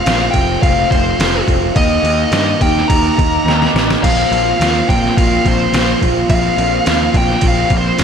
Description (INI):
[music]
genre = indie rock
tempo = 106 BPM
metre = 4/4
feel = straight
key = unclear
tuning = A4 = 440 Hz
[part]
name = bluesy overdriven lead guitar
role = melody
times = 0.0-8.0 s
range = C5 to Bb5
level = -17 LUFS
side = left 2 dB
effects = distortion, slapback echo
[part]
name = electric guitar through a small old amp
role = riff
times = 0.0-8.0 s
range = Eb3 to G4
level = -17 LUFS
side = right 1 dB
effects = double-tracked left and right, slapback echo
[part]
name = fuzz picked electric bass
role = bass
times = 0.1-8.0 s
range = E1 to G2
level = -19 LUFS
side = equal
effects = overdrive
[part]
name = trip hop sampler-style drum kit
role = drums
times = 0.1-8.0 s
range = crash cymbal, kick drum, snare drum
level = -16 LUFS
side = equal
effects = none
[sound]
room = moderate concert hall reverb, RT60 2.5 s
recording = big arena sound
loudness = -11 LUFS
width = side -7 dB against mid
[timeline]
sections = 0.0-8.0 A section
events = drum fill 3.5-4.0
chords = 0.0 F; 1.8 Eb; 4.0 Bbsus2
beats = 0.07 0.63 1.20 | 1.76 2.33 2.89 3.46 | 4.03 4.59 5.16 5.72 | 6.29 6.85 7.42 7.98